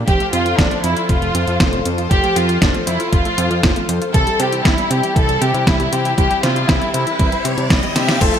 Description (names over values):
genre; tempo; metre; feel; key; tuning
italo disco; 118 BPM; 4/4; straight; unclear; A4 = 440 Hz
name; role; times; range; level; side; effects
rich chamber string section; sustained chords; 0.0-8.4 s; F3 to C5; -25 LUFS; left 3 dB; none
fat analog bass; bass; 0.0-8.3 s; F1 to C3; -21 LUFS; equal; none
warm studio violin section; melody; 0.1-8.4 s; D4 to A5; -19 LUFS; equal; digital delay
analog pluck; arpeggios; 0.1-8.4 s; E3 to F4; -26 LUFS; right 4 dB; chorus, digital delay
detuned 8-bit digital drum machine; drums; 0.1-8.4 s; crash cymbal, hi-hat, snare drum; -20 LUFS; equal; overdrive, gated reverb
electronic kick drum; drums; 0.1-8.3 s; none; -17 LUFS; equal; overdrive
riser and downlifter; sound effects; 6.3-8.4 s; none; -26 LUFS; left 1 dB; none
warm electric grand piano; stabs; 8.2-8.4 s; A3 to C5; -26 LUFS; left 4 dB; vintage 12-bit sampler grit
room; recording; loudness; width
moderate lush hall reverb, RT60 1.6 s, digital ambience; bright 1980s-style digital production; -14 LUFS; side -8 dB against mid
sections
0.0-8.2 A section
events
riser 6.3-8.2; drum fill 8.0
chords
0.1 F; 4.1 C